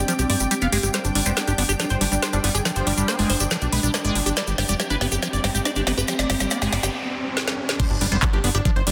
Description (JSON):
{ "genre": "psychedelic trance", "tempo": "140 BPM", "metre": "4/4", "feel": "straight", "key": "G major", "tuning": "A4 = 440 Hz", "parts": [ { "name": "supersaw stab", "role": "melody", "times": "0.0-8.9 s", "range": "D4 to F5", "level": "-31 LUFS", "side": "equal", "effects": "phaser, sidechain pumping, low-pass filter, dub echo" }, { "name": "evolving wavetable pad", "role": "sustained chords", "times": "0.0-7.8 s", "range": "G3 to D4", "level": "-33 LUFS", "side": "equal", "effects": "chorus, built-in reverb, sidechain pumping" }, { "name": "plucky analog bass", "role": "bass", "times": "0.0-8.9 s", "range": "F1 to G2", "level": "-27 LUFS", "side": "equal", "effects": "tube saturation" }, { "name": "granular cloud pad", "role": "texture", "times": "0.0-6.9 s", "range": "D4 to G5", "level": "-36 LUFS", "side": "equal", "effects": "built-in reverb, sidechain pumping" }, { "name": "liquid acid bass", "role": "riff", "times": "0.1-8.9 s", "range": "F3 to G4", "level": "-30 LUFS", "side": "equal", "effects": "phaser, sidechain pumping, tape echo" }, { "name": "garage drum kit", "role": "drums", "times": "0.1-8.9 s", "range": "crash cymbal, handclaps, hi-hat, snare drum", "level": "-28 LUFS", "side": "equal", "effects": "high-pass filter on hats, soft clipping on snare, high-pass filter on snare, high-pass filter on cymbals, high-pass filter on room" }, { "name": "egg shaker", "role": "percussion", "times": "0.1-6.9 s", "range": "none", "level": "-32 LUFS", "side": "equal", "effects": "none" }, { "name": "riser, noise sweep and impact", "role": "sound effects", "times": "4.0-8.9 s", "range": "none", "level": "-36 LUFS", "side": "equal", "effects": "none" }, { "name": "metallic wobble bass", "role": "second line", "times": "1.3-3.4, 8.1-8.3 s", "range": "F3 to B3", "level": "-38 LUFS", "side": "equal", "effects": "none" }, { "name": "electronic kick drum", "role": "drums", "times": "7.8-8.7 s", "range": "none", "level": "-24 LUFS", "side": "equal", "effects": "none" } ], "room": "light reverb", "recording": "dense, heavily limited modern master", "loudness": "-22 LUFS", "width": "mono", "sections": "0.0-7.8 A section; 7.8-8.9 B section", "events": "build-up 0.0-7.8; drum fill 0.9-6.9, 7.4-7.8; noise sweep 6.1-7.8; break 6.9-7.8; drop 7.8-8.9; impact 7.8-8.9", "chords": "0.0 G5", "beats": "0.08 0.51 | 0.94 1.37 1.80 2.23 | 2.65 3.08 3.51 3.94 | 4.37 4.80 5.22 5.65 | 6.08 6.51 6.94 7.37 | 7.80 8.22 8.65" }